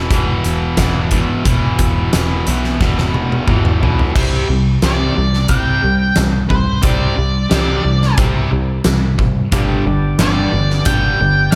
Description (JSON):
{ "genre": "classic rock", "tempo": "89 BPM", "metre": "4/4", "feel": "straight", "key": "unclear", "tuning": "A4 = 439 Hz", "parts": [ { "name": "distorted electric guitar", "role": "riff", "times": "0.0-11.6 s", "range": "E2 to C4", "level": "-20 LUFS", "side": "equal", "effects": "distortion, slapback echo" }, { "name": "overdriven picked electric bass", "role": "bass", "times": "0.0-11.5 s", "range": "E1 to C2", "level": "-22 LUFS", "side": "equal", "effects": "none" }, { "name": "huge arena drum kit", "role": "drums", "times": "0.1-11.6 s", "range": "crash cymbal, hi-hat, kick drum, snare drum, toms", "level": "-19 LUFS", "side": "equal", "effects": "none" }, { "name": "octave-fuzz lead guitar", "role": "melody", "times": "4.8-11.6 s", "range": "C5 to G5", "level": "-22 LUFS", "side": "equal", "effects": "distortion, slapback echo, digital delay" }, { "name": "overdriven tonewheel organ", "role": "sustained chords", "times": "9.6-11.6 s", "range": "B3 to D5", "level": "-29 LUFS", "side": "equal", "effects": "slow rotary speaker" } ], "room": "light reverb, small room ambience", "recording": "none", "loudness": "-15 LUFS", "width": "mono", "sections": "0.0-4.2 A section; 4.2-11.6 B section", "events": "drum fill 2.8-4.2", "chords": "0.0 E5; 4.2 Csus2; 9.5 G", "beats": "0.10 0.78 | 1.45 2.13 2.80 3.48 | 4.15 4.82 5.50 6.17 | 6.84 7.51 8.19 8.86 | 9.53 10.20 10.87 11.54" }